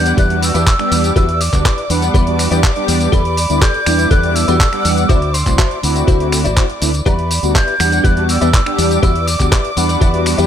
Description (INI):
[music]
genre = nu-disco, nu disco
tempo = 122 BPM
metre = 4/4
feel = straight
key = E minor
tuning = A4 = 441 Hz
[part]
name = breathy mellow concert flute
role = melody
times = 0.0-10.5 s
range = B5 to G6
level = -20 LUFS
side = right 2 dB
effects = ping-pong delay
[part]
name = mellow synth brass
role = accompaniment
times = 0.0-10.5 s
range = G3 to F#5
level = -19 LUFS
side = equal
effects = chorus, sidechain pumping
[part]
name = dark studio violin section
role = sustained chords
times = 0.0-10.5 s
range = D5 to D6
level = -24 LUFS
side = left 2 dB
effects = sidechain pumping
[part]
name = fingered electric bass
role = bass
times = 0.0-10.5 s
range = A1 to E2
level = -17 LUFS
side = equal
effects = tube saturation
[part]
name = direct-recorded clean electric guitar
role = riff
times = 0.1-10.5 s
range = E4 to E5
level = -22 LUFS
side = left 4 dB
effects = ensemble chorus
[part]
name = dusty soul sampler-style drum kit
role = drums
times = 0.1-10.5 s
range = finger snaps, handclaps, hi-hat, tambourine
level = -20 LUFS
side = equal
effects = none
[part]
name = electronic kick drum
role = drums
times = 0.2-10.1 s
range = none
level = -14 LUFS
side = equal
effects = none
[sound]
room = digital ambience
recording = none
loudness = -11 LUFS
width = side -9 dB against mid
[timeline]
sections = 0.0-10.5 A section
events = none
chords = 0.0 Em7; 3.1 A9sus4; 5.1 D9; 7.1 Em7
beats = 0.18 0.67 | 1.16 1.65 2.15 2.64 | 3.13 3.62 4.11 4.61 | 5.10 5.59 6.08 6.57 | 7.06 7.56 8.05 8.54 | 9.03 9.52 10.02